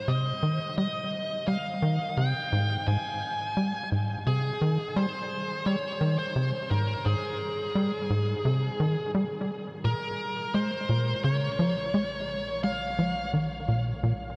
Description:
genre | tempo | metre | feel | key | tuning
ambient, sequencer-driven space music | 86 BPM | 4/4 | straight | Ab major | A4 = 444 Hz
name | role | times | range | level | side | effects
high-gain lead guitar | melody | 0.0-13.3 s | Ab4 to Ab5 | -34 LUFS | equal | distortion, shimmer reverb, tape echo
tight sequencer bass | riff | 0.1-14.1 s | Ab2 to Ab3 | -30 LUFS | equal | tape echo
fat analog bass | bass | 9.8-14.4 s | Bb1 | -48 LUFS | equal | none
room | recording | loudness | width
wet huge ambient reverb, RT60 9.1 s | dreamy mix soaked in reverb | -28 LUFS | mono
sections
0.0-9.8 A section; 9.8-14.4 B section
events
none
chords
0.0 Abmaj7; 9.8 Bbm

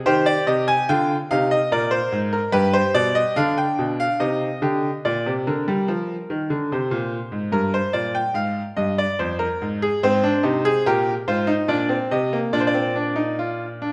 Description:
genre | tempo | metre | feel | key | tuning
classical, baroque-style 3-part fugue for grand piano | 72 BPM | 3/4 | straight | unclear | A4 = 438 Hz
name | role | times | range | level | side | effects
bright grand piano | solo | 0.0-13.9 s | F2 to Ab5 | -22 LUFS | equal | none
room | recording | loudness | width
wet recital hall reverb, RT60 1.7 s | none | -22 LUFS | mono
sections
0.0-5.0 A section; 5.0-13.9 B section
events
none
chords
0.1 Cm; 1.7 Bb; 2.5 G7; 4.2 Cm; 5.0 Gm/Bb (rootless); 6.7 Abadd9; 7.5 Eb/G; 9.2 Fmadd11; 10.0 Fm7/Ab (rootless); 12.5 Bb

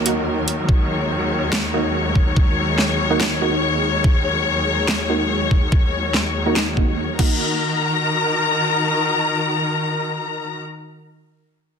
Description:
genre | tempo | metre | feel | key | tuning
heavy wobble dubstep | 143 BPM | 4/4 | half-time | Eb minor | A4 = 440 Hz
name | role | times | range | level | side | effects
warm symphonic string section | sustained chords | 0.0-10.6 s | Eb2 to Bb5 | -20 LUFS | left 2 dB | sidechain pumping
orchestra-hit-like synth stab | stabs | 0.0-10.6 s | Bb3 to Gb4 | -23 LUFS | right 3 dB | built-in reverb, tape echo
dubstep drum kit | drums | 0.1-7.3 s | crash cymbal, hi-hat, snare drum | -23 LUFS | equal | none
electronic kick drum | drums | 0.7-7.3 s | none | -16 LUFS | equal | none
room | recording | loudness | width
moderate plate reverb, RT60 1.5 s | dense, heavily limited modern master | -17 LUFS | side -6 dB against mid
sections
0.0-7.4 A section; 7.4-10.8 B section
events
filter sweep on synth stab 0.0-7.4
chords
0.0 Ebm

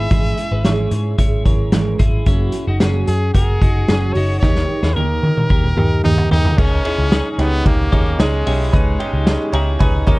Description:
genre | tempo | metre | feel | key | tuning
jangly indie pop | 111 BPM | 4/4 | straight | unclear | A4 = 445 Hz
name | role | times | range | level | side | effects
brilliant trumpet | melody | 0.0-9.8 s | G#3 to E5 | -24 LUFS | equal | none
fingerpicked steel-string acoustic guitar | accompaniment | 0.0-6.6 s | G#2 to A#4 | -23 LUFS | right 4 dB | none
twelve-string electric guitar | arpeggios | 0.0-10.2 s | G#3 to E5 | -25 LUFS | left 2 dB | none
vintage muted picked electric bass | bass | 0.0-10.2 s | F#1 to D#3 | -18 LUFS | equal | none
vintage drum kit | drums | 0.1-10.2 s | crash cymbal, hi-hat, kick drum, ride cymbal, snare drum, toms | -17 LUFS | equal | none
bright upright piano | accompaniment | 6.6-10.2 s | C#4 to A#5 | -23 LUFS | right 2 dB | none
room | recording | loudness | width
little or no reverb | dark, warm production | -14 LUFS | side -21 dB against mid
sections
0.0-6.6 A section; 6.6-10.2 B section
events
drum fill 4.4-6.6; upright piano fill 9.3-10.2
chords
0.1 C#m/G#; 2.3 F#add9; 4.4 D#; 6.6 C#sus2

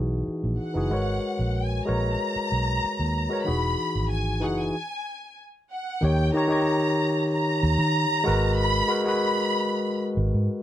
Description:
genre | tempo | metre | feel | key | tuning
lush 1970s-style soul | 94 BPM | 4/4 | straight | G# minor | A4 = 439 Hz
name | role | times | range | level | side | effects
barky tine electric piano | accompaniment | 0.0-10.6 s | D#3 to C#5 | -26 LUFS | left 1 dB | overdrive
vintage muted fingered electric bass | bass | 0.0-10.5 s | E1 to D#3 | -25 LUFS | right 1 dB | none
warm studio violin section | melody | 0.6-10.0 s | F#5 to B5 | -28 LUFS | equal | none
room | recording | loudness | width
little or no reverb | dry, close 1970s-style studio recording | -22 LUFS | side -12 dB against mid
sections
0.0-6.0 A section; 6.0-10.6 B section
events
stop 4.7-6.0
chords
0.0 Emaj9; 0.9 G#m11; 3.5 Emaj9; 4.7 N.C.; 6.0 D#7; 8.3 G#m9

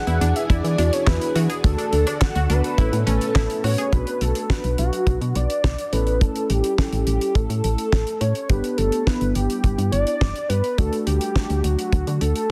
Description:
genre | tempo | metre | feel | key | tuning
synth-pop | 105 BPM | 4/4 | straight | B minor from 3.9 s | A4 = 440 Hz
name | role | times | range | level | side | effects
unison lead | melody | 0.0-12.5 s | F#4 to F#5 | -27 LUFS | equal | none
muted felt-like synth keys | accompaniment | 0.0-12.4 s | A3 to B4 | -31 LUFS | equal | chorus
string machine, full ensemble | sustained chords | 0.0-3.9 s | D3 to A4 | -34 LUFS | equal | ensemble chorus
analog pluck | arpeggios | 0.0-3.9 s | C#4 to G#4 | -34 LUFS | equal | chorus, tape echo
solid FM bass | bass | 0.1-12.3 s | G1 to E3 | -24 LUFS | equal | none
damped 70s drum kit | drums | 0.1-12.5 s | handclaps, hi-hat, kick drum, snare drum | -25 LUFS | equal | none
room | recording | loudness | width
light reverb, studio ambience | dense, heavily limited modern master | -21 LUFS | mono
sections
0.0-3.9 A section; 3.9-12.5 B section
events
none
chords
0.0 E7; 1.6 D; 2.8 Aadd9; 3.9 Bm; 5.9 A; 8.5 G; 10.8 D

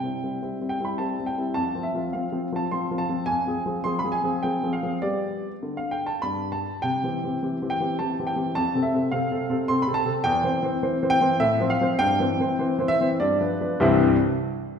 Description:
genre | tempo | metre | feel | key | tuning
classical-period piano sonatina | 103 BPM | 3/4 | rubato | C major | A4 = 441 Hz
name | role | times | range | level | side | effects
warm baby grand piano | solo | 0.0-14.2 s | C2 to C6 | -22 LUFS | equal | none
room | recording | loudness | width
wet recital hall reverb, RT60 1.7 s | heard from further back in the room | -22 LUFS | side -7 dB against mid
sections
0.0-13.8 A section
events
none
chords
0.0 C; 1.6 F5; 3.3 Fm; 5.0 G; 6.8 C; 8.6 F; 10.3 C/E; 11.4 F/A; 12.0 C/G; 13.2 G7; 13.8 C

